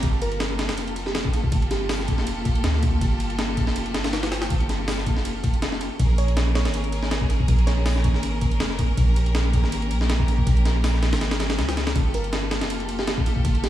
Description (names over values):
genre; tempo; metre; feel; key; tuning
drum and bass, jungle; 161 BPM; 4/4; swing 54% on 16ths; unclear; A4 = 443 Hz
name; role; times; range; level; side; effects
clear symphonic string section; sustained chords; 0.0-13.7 s; Bb3 to Bb4; -30 LUFS; left 1 dB; none
long sustained 808-style bass; bass; 0.0-13.7 s; F1 to D2; -24 LUFS; right 1 dB; none
breakbeat sampler-style drum kit; drums; 0.0-13.7 s; hi-hat, kick drum, ride cymbal, snare drum; -23 LUFS; equal; none
bell-like FM electric piano; melody; 0.2-2.2, 6.2-8.2, 12.1-13.7 s; G4 to Db5; -33 LUFS; right 2 dB; chorus, dub echo
swell; sound effects; 11.4-12.0 s; none; -37 LUFS; right 3 dB; none
room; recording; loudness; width
little or no reverb; studio reverb; -20 LUFS; side -12 dB against mid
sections
0.0-13.7 A section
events
drop 0.0-13.7; break 11.2-12.0; swell 11.4-12.0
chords
0.0 Gm9; 6.0 Bbm7; 12.0 Gm9